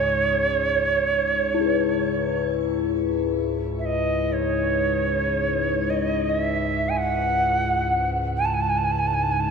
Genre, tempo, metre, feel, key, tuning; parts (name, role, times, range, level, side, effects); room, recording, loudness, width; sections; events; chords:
world meditative, free-time meditation music; free time; C# minor; A4 = 439 Hz
Native American-style cedar flute; melody; 0.0-9.5 s; C#5 to A5; -23 LUFS; right 3 dB; shimmer reverb, analog delay
analog drone; drone; 0.0-9.5 s; C#2 to G#2; -27 LUFS; equal; chorus
bronze singing bowl; texture; 0.0-3.6 s; E4 to B4; -27 LUFS; left 12 dB; shimmer reverb
wet spring reverb, RT60 2.7 s; echo-heavy mix; -20 LUFS; side -5 dB against mid
0.0-3.1 A section; 3.1-9.5 A section